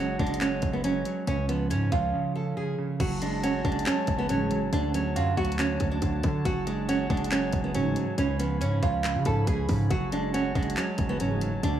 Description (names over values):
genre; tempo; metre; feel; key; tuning
hip hop, trap; 139 BPM; 4/4; half-time; F# harmonic minor; A4 = 440 Hz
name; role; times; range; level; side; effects
nylon-string guitar; melody; 0.0-11.8 s; B3 to A4; -29 LUFS; right 2 dB; none
clean electric guitar; accompaniment; 0.0-11.8 s; C#3 to F#4; -31 LUFS; right 2 dB; none
hard-hitting 808-style bass; bass; 0.0-11.8 s; F#1 to D3; -30 LUFS; equal; none
trap drum kit; drums; 0.2-11.7 s; crash cymbal, handclaps, hi-hat, kick drum; -31 LUFS; equal; none
mellow brass ensemble; sustained chords; 3.0-11.8 s; E#4 to B5; -38 LUFS; left 2 dB; none
mellow synth brass; stabs; 4.3-4.6, 7.7-8.1, 11.2-11.5 s; A1 to C#3; -33 LUFS; equal; chorus, tape echo
room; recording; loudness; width
light reverb; studio ambience; -24 LUFS; side -10 dB against mid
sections
0.0-3.0 A section; 3.0-11.8 B section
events
break 2.1-3.0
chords
0.0 F#sus2; 1.3 C#; 3.0 F#madd9; 4.7 Dmaj7; 6.5 F#madd9; 8.2 C#7; 9.9 F#madd9